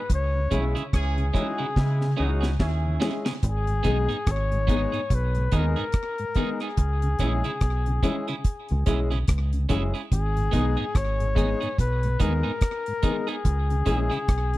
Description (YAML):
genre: roots reggae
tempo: 72 BPM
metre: 4/4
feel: swing 59% on 16ths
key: G# minor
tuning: A4 = 439 Hz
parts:
  - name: clear flugelhorn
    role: melody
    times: 0.0-14.6 s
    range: G#4 to C#5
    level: -30 LUFS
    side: left 4 dB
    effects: tape echo
  - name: deep dub fingered electric bass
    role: bass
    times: 0.1-14.6 s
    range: F#1 to C#3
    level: -24 LUFS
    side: equal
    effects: none
  - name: deep reggae drum kit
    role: drums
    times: 0.1-14.6 s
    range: hi-hat, kick drum, rim click, snare drum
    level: -24 LUFS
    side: equal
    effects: none
  - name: mellow tonewheel organ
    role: accompaniment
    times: 0.3-14.6 s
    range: G#2 to C#4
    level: -33 LUFS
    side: left 1 dB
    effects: chorus vibrato, slow rotary speaker, slapback echo
  - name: warm horn section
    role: second line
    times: 0.5-3.2 s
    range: C#3 to G#4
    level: -34 LUFS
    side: right 2 dB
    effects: tape echo
  - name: electric guitar at the edge of break-up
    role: accompaniment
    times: 0.5-14.2 s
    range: B3 to G#4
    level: -34 LUFS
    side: right 7 dB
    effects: tape echo
  - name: warm concert grand piano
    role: stabs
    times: 0.5-14.6 s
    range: G#3 to G#4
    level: -30 LUFS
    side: left 3 dB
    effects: none
room: little or no reverb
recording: dry, close 1970s-style studio recording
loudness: -22 LUFS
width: side -17 dB against mid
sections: 0.0-3.4 A section; 3.4-14.6 B section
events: drum fill 1.8-3.4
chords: 0.1 C#m; 3.4 G#m; 6.8 C#m; 10.1 G#m; 13.5 C#m